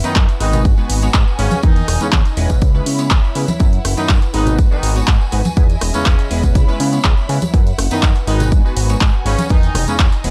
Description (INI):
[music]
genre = filtered disco house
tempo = 122 BPM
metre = 4/4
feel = straight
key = unclear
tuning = A4 = 441 Hz
[part]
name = brilliant horn section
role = melody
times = 0.0-10.1 s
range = C#3 to D#4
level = -25 LUFS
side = equal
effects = vintage 12-bit sampler grit, sidechain pumping
[part]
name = funky polysynth comp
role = accompaniment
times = 0.0-10.3 s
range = F#3 to C#5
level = -27 LUFS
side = equal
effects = chorus, phaser, sidechain pumping
[part]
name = clear symphonic violin section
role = sustained chords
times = 0.0-10.3 s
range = D#4 to B5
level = -31 LUFS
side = equal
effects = vintage 12-bit sampler grit, sidechain pumping
[part]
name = fat analog bass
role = bass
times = 0.0-10.3 s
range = E1 to C#3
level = -21 LUFS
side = equal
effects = tube saturation, sidechain pumping
[part]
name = punchy analog drum machine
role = drums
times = 0.0-10.3 s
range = handclaps, hi-hat, rim click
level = -24 LUFS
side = equal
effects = overdrive, studio ambience, sidechain pumping on hats
[part]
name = tambourine and congas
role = percussion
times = 0.0-10.2 s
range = none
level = -27 LUFS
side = equal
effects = sidechain pumping on perc
[part]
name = electronic kick drum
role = drums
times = 0.2-10.1 s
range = none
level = -15 LUFS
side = equal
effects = studio ambience
[sound]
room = small room ambience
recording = dry, gritty hardware recording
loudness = -15 LUFS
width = mono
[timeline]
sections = 0.0-10.3 A section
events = none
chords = 0.4 G#m7; 1.6 Emaj7; 2.6 C#m7; 3.6 F#7sus4; 4.3 G#m7; 5.6 Emaj7; 6.6 C#m7; 7.5 F#7sus4; 8.3 G#m7; 9.5 Emaj7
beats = 0.16 0.65 1.14 | 1.64 2.13 2.62 3.11 | 3.60 4.09 4.59 5.08 | 5.57 6.06 6.55 7.04 | 7.54 8.03 8.52 9.01 | 9.50 10.00